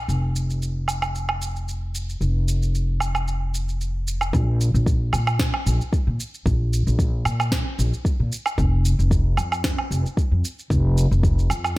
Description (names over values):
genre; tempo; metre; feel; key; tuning
organic downtempo; 113 BPM; 4/4; swing 54% on 16ths; unclear; A4 = 440 Hz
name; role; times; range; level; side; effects
upright bass; bass; 0.0-11.8 s; F1 to Bb2; -21 LUFS; equal; sidechain pumping
electronic shaker, woodblock and snare drum; drums; 0.1-11.7 s; none; -27 LUFS; right 2 dB; small room reverb
electronic kick drum; drums; 4.3-11.3 s; none; -22 LUFS; equal; small room reverb
room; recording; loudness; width
little or no reverb; none; -20 LUFS; side -19 dB against mid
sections
0.0-4.3 A section; 4.3-11.8 B section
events
none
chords
none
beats
| 0.09 0.62 1.15 1.68 | 2.21 2.74 3.27 3.80 | 4.33 4.86 5.39 5.92 | 6.46 6.99 7.52 8.05 | 8.58 9.11 9.64 10.17 | 10.70 11.23 11.77